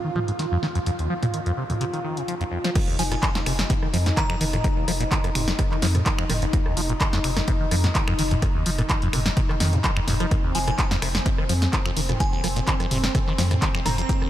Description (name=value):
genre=acid house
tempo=127 BPM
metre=4/4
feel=swing 53% on 16ths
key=F minor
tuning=A4 = 442 Hz
part: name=warm analog pad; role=sustained chords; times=0.0-14.3 s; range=C4 to F4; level=-31 LUFS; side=equal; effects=chorus, sidechain pumping
part: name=liquid acid bass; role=riff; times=0.0-14.3 s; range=Eb2 to F3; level=-27 LUFS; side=equal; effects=phaser, vintage 12-bit sampler grit, sidechain pumping
part: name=punchy analog drum machine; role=drums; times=0.2-14.3 s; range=crash cymbal, finger snaps, handclaps, hi-hat, rim click, snare drum, toms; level=-27 LUFS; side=equal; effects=none
part: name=electronic kick drum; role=drums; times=2.8-14.2 s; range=none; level=-24 LUFS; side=equal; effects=none
part: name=glassy synth bell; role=melody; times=3.0-4.6, 10.6-14.1 s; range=Ab5 to Bb5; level=-34 LUFS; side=right 1 dB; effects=chorus, analog delay
part: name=saturated sub bass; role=bass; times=3.0-14.0 s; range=F1 to F2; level=-25 LUFS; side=equal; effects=sidechain pumping
room=light reverb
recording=none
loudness=-20 LUFS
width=side -12 dB against mid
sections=0.0-2.8 A section; 2.8-14.3 B section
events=filter sweep on drum 0.0-2.8; filter sweep on acid bass 0.0-2.8; drop 2.8-14.3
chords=0.0 F7(no3)